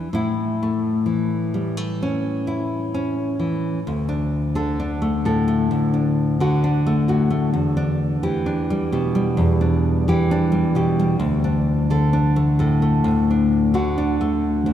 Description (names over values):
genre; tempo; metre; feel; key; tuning
folk; 65 BPM; 4/4; straight; D major; A4 = 440 Hz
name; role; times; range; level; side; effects
nylon-string guitar; solo; 0.0-14.7 s; D2 to A4; -18 LUFS; equal; none
room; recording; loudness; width
wet cathedral reverb, RT60 5.0 s; in a vast, echoing space; -18 LUFS; side -10 dB against mid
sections
0.0-3.8 A section; 3.8-14.7 B section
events
none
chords
0.1 A; 3.8 D; 7.5 Em7; 11.2 D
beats
| 0.13 1.06 1.98 2.91 | 3.83 4.76 5.68 6.60 | 7.52 8.44 9.36 10.28 | 11.20 12.12 13.04 13.96